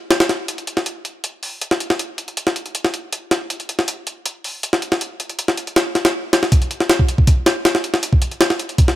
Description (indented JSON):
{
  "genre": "drum and bass",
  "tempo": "159 BPM",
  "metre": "4/4",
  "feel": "straight",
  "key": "none",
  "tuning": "none",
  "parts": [
    { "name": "jungle sampler-style drum kit", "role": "drums", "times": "0.1-9.0 s", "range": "hi-hat, kick drum, snare drum", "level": "-16 LUFS", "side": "equal", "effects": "none" }
  ],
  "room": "digital ambience",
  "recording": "none",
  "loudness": "-17 LUFS",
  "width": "side -14 dB against mid",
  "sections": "0.0-6.5 A section; 6.5-9.0 B section",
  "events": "drop 6.5-9.0",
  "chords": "none"
}